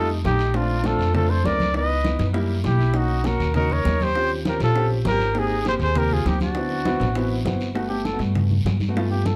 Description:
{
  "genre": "Afro-Cuban jazz",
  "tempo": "200 BPM",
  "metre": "4/4",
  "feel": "straight",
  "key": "unclear",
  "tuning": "A4 = 440 Hz",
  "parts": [
    { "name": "breathy trumpet", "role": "melody", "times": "0.0-9.4 s", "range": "F4 to D#5", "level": "-27 LUFS", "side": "equal", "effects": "none" },
    { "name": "breathy bright jazz flute", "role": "second line", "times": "0.0-7.6 s", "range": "D4 to B4", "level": "-34 LUFS", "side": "equal", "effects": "none" },
    { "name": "warm grand piano", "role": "accompaniment", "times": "0.0-9.3 s", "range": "E3 to A4", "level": "-30 LUFS", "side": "equal", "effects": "none" },
    { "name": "upright bass", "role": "bass", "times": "0.0-9.3 s", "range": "G1 to G2", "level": "-25 LUFS", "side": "equal", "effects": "none" },
    { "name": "bongos", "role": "percussion", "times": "0.1-9.4 s", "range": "none", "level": "-35 LUFS", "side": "equal", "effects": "none" },
    { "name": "congas", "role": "percussion", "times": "0.1-9.4 s", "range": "none", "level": "-32 LUFS", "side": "equal", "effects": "none" },
    { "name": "guiro", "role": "percussion", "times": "0.2-9.4 s", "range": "none", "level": "-42 LUFS", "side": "equal", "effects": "none" }
  ],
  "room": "light reverb",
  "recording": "dark, warm production",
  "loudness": "-22 LUFS",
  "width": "mono",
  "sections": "0.0-7.8 A section; 7.8-9.4 B section",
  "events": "trumpet solo 7.8-9.4",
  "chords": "0.0 F9; 0.5 Bbmaj7; 1.7 C#m9; 2.3 F#7b9; 2.9 Bmaj9; 4.1 Eb13; 5.3 Abmaj7; 6.5 D13; 7.8 Gmaj9"
}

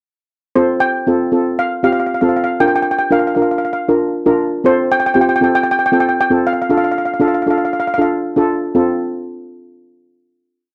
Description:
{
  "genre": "calypso",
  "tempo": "117 BPM",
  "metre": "4/4",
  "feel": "straight",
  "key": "F major",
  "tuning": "A4 = 440 Hz",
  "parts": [
    { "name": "steel pan", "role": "melody", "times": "0.6-8.1 s", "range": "C5 to G5", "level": "-18 LUFS", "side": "equal", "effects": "none" },
    { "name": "steel pan", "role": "accompaniment", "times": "0.6-9.0 s", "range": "C4 to Bb4", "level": "-17 LUFS", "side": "equal", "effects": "none" }
  ],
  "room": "little or no reverb",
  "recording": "dry, close 1970s-style studio recording",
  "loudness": "-15 LUFS",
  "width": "mono",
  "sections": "0.6-8.7 verse; 8.7-10.7 final chord",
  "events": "none",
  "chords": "0.6 Fadd9; 2.6 Bb; 4.6 Fadd9; 6.7 Dm; 8.7 F"
}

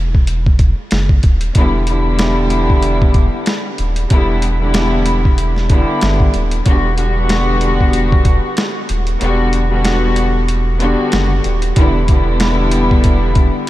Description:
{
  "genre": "hip hop, boom-bap hip-hop",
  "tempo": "94 BPM",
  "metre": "4/4",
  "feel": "swing 56% on 16ths",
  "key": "E minor",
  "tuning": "A4 = 440 Hz",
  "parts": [
    { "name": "saturated sub bass", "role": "bass", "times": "0.0-13.5 s", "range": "D#1 to G1", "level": "-16 LUFS", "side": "equal", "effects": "none" },
    { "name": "lo-fi sampler-style drum kit", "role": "drums", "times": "0.1-13.7 s", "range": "hi-hat, kick drum, snare drum", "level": "-15 LUFS", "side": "equal", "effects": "none" },
    { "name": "warm studio string section", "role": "accompaniment", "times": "1.5-13.7 s", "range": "D3 to F#4", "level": "-16 LUFS", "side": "left 1 dB", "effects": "high-pass filter, low-pass filter" }
  ],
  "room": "light reverb, digital ambience",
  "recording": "none",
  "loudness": "-12 LUFS",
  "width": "side -15 dB against mid",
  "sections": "0.0-11.8 A section; 11.8-13.7 B section",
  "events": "kick muted 9.2-11.8",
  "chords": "0.0 D#m; 1.6 Em7; 6.7 Gmaj7; 11.8 Em7"
}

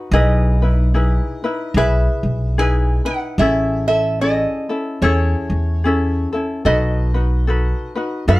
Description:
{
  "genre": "Hawaiian",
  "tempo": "73 BPM",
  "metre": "4/4",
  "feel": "swing 59% on 8ths",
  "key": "E major",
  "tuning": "A4 = 437 Hz",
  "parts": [
    { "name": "ukulele", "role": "accompaniment", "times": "0.0-8.4 s", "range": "C#4 to B4", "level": "-21 LUFS", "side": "left 2 dB", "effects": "none" },
    { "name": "lap resonator guitar", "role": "melody", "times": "0.1-8.4 s", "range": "C#5 to G#5", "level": "-21 LUFS", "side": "right 2 dB", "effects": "none" },
    { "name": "upright bass", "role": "bass", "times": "0.1-8.4 s", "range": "A1 to F#2", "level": "-17 LUFS", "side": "equal", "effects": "none" }
  ],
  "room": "light reverb",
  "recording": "dark, warm production",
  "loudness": "-15 LUFS",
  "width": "side -19 dB against mid",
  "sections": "0.0-8.4 A section",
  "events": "none",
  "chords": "0.1 Emaj7/B; 3.4 Amaj7; 6.7 B7"
}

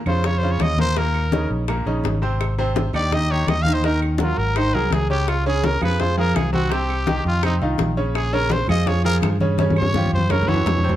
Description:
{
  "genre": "latin, salsa",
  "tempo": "167 BPM",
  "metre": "4/4",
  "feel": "straight",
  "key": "unclear",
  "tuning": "A4 = 440 Hz",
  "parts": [
    { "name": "growling trumpet", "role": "melody", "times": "0.1-10.9 s", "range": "Db4 to F5", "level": "-24 LUFS", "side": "equal", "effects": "plate reverb" },
    { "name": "bright grand piano", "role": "accompaniment", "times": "0.1-11.0 s", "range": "Bb2 to Eb5", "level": "-24 LUFS", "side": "right 1 dB", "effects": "none" },
    { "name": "fingered electric bass", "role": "bass", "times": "0.1-11.0 s", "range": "Ab1 to G2", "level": "-22 LUFS", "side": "equal", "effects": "none" },
    { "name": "bongos", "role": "percussion", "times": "0.1-11.0 s", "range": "none", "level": "-30 LUFS", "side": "left 8 dB", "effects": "none" },
    { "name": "claves", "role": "percussion", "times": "0.1-10.5 s", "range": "none", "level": "-35 LUFS", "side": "right 8 dB", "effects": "none" },
    { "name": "congas", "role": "percussion", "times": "0.1-11.0 s", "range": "none", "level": "-25 LUFS", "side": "left 2 dB", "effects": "none" }
  ],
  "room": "moderate studio reverb, RT60 0.6 s",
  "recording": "dark, warm production",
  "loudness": "-18 LUFS",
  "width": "side -12 dB against mid",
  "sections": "0.0-11.0 A section",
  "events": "trumpet solo 0.0-11.0; drum fill 9.6-11.0",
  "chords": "0.0 Bbm; 1.0 Eb5; 2.4 Abmaj7; 3.8 Ebm; 4.6 Ab7; 5.3 Dbmaj7; 6.7 Cm; 7.4 F5; 8.2 Bbm7; 9.6 Dbmaj7#11; 10.3 Gb5"
}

